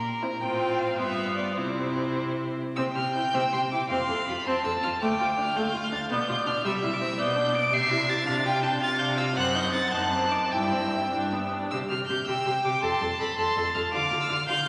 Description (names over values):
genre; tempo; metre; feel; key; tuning
quick classical-period movement for string quartet; 98-112 BPM (dotted quarters); 6/8; rubato; C major; A4 = 440 Hz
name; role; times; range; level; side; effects
clear violin; melody; 0.0-14.7 s; Bb4 to D7; -32 LUFS; equal; none
clear cello; bass; 0.0-14.7 s; D2 to D3; -36 LUFS; equal; none
clear violin; second line; 0.2-14.7 s; E4 to A5; -31 LUFS; equal; none
clear viola; accompaniment; 0.2-14.6 s; G3 to A4; -32 LUFS; equal; none
room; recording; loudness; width
wet concert hall reverb, RT60 2.3 s; none; -27 LUFS; mono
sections
0.0-2.8 A section; 2.8-11.7 B section; 11.7-14.7 B section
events
none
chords
0.4 F/A; 1.0 G7; 1.6 C; 3.9 F; 5.0 Dm; 6.1 G7/B; 6.6 C; 7.2 G/B; 7.7 C; 8.3 Dm7/C; 9.4 F#dim7; 10.5 C/G; 11.1 G; 11.7 C; 12.8 F; 13.9 Dm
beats
| 0.41 0.99 | 1.57 2.17 | 2.77 3.34 | 3.90 4.46 | 5.02 5.57 | 6.11 6.64 | 7.19 7.73 | 8.27 8.81 | 9.36 9.93 | 10.53 11.13 | 11.72 12.28 | 12.83 13.38 | 13.93 14.48